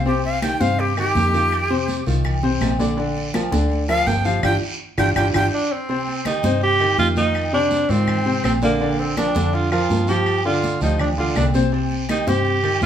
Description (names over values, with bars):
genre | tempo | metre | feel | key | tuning
latin, salsa | 165 BPM | 4/4 | straight | C minor | A4 = 440 Hz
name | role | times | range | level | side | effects
breathy bright jazz flute | melody | 0.0-5.5 s | G4 to G5 | -21 LUFS | equal | none
warm concert grand piano | accompaniment | 0.0-12.9 s | C3 to D5 | -23 LUFS | left 2 dB | none
vintage muted fingered electric bass | bass | 0.0-12.9 s | G1 to Ab2 | -23 LUFS | equal | none
agogo bells and timbales | percussion | 0.1-12.9 s | none | -30 LUFS | right 3 dB | none
congas | percussion | 0.1-12.9 s | none | -27 LUFS | right 1 dB | none
guiro | percussion | 0.1-12.9 s | none | -34 LUFS | right 3 dB | none
claves | percussion | 0.4-12.8 s | none | -32 LUFS | left 3 dB | none
breathy tenor saxophone | melody | 5.5-12.9 s | Bb3 to G4 | -21 LUFS | right 2 dB | none
room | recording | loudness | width
wet studio reverb, RT60 0.7 s | band playing live in one room | -17 LUFS | side -9 dB against mid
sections
0.0-5.9 A section; 5.9-12.9 B section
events
flute solo 0.0-5.9; band accent 4.4-5.9; drum fill 5.0-5.9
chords
0.1 Cm; 1.5 F5; 3.0 Bb; 4.4 G5; 5.9 Cm; 7.3 Fm7; 8.8 Bb; 10.3 G5; 11.7 Cm